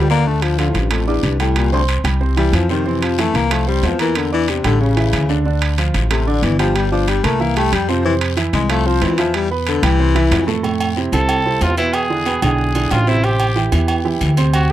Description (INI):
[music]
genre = Afro-Cuban jazz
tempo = 185 BPM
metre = 4/4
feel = straight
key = D minor, F major from 10.6 s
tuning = A4 = 441 Hz
[part]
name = warm baritone saxophone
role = second line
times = 0.0-10.6 s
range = D2 to Bb3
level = -19 LUFS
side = left 6 dB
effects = none
[part]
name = warm baby grand piano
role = accompaniment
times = 0.0-14.7 s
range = A2 to D6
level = -21 LUFS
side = right 5 dB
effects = none
[part]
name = upright bass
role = bass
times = 0.0-14.7 s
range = G1 to F2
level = -18 LUFS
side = equal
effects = none
[part]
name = guiro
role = percussion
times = 0.1-14.7 s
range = none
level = -31 LUFS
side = left 16 dB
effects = none
[part]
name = timbales and agogo bells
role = percussion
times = 0.4-14.7 s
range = none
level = -24 LUFS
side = right 5 dB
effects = none
[part]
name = clear trumpet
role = melody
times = 11.1-14.7 s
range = E4 to A4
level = -19 LUFS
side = equal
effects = slapback echo
[sound]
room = light reverb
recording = dry, close 1970s-style studio recording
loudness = -14 LUFS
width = side -13 dB against mid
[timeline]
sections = 0.3-10.6 A section; 10.6-14.7 A section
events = baritone saxophone solo 0.0-10.6; trumpet solo 10.6-14.7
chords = 0.3 Dm7; 1.6 C; 2.9 F5; 4.2 Em7b5; 4.8 A; 5.5 Dmadd11; 6.8 Gm; 7.4 C; 8.1 F5; 9.3 Em; 10.0 C6; 10.6 Fmaj7; 11.9 E7; 13.2 Am7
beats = | 0.26 0.59 0.91 1.24 | 1.56 1.89 2.21 2.54 | 2.86 3.19 3.51 3.83 | 4.16 4.48 4.81 5.13 | 5.46 5.78 6.11 6.43 | 6.75 7.08 7.40 7.73 | 8.05 8.38 8.70 9.02 | 9.35 9.67 9.99 10.32 | 10.64 10.97 11.29 11.62 | 11.94 12.26 12.59 12.91 | 13.24 13.56 13.88 14.21 | 14.53